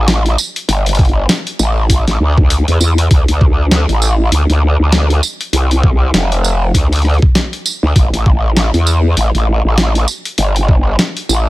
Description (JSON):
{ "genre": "glitch hop", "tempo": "99 BPM", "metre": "4/4", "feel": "swing 58% on 16ths", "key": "A minor", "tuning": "A4 = 440 Hz", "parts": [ { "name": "growl bass", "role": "bass", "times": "0.0-11.5 s", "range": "F1 to E2", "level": "-12 LUFS", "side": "equal", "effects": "chorus, tube saturation" }, { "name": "boom bap sampler-style drum kit", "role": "drums", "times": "0.1-11.4 s", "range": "hi-hat, rim click, snare drum, tambourine", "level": "-16 LUFS", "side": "equal", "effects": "small room ambience" }, { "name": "electronic kick drum", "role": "drums", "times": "1.0-10.8 s", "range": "none", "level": "-11 LUFS", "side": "equal", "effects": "small room ambience" } ], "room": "little or no reverb", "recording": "none", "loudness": "-10 LUFS", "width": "side -18 dB against mid", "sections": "0.0-11.5 A section", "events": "none", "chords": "none", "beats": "0.08 | 0.69 1.29 1.90 2.50 | 3.11 3.71 4.32 4.93 | 5.53 6.14 6.75 7.35 | 7.96 8.56 9.17 9.78 | 10.38 10.99" }